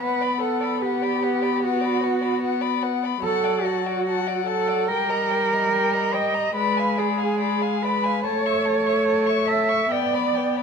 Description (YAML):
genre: classical, slow romantic movement for string quartet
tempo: 73 BPM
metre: 4/4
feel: rubato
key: B minor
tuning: A4 = 441 Hz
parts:
  - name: muted violin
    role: melody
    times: 0.0-10.6 s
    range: F#5 to C#6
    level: -27 LUFS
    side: left 13 dB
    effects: none
  - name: muted violin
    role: second line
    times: 0.0-10.6 s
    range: Bb4 to F#5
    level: -32 LUFS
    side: left 8 dB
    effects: none
  - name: muted viola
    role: accompaniment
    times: 0.0-10.6 s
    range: F#3 to B3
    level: -26 LUFS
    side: left 1 dB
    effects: none
  - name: muted cello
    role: bass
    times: 0.0-10.6 s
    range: F#4 to E5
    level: -23 LUFS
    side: right 6 dB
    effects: none
room: wet recital hall reverb, RT60 1.2 s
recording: none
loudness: -20 LUFS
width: side -6 dB against mid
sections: 0.0-10.6 A section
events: none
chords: 0.0 Bm; 3.2 D/F#; 4.9 Eb/G; 6.6 G#dim7; 8.2 A; 9.9 G/B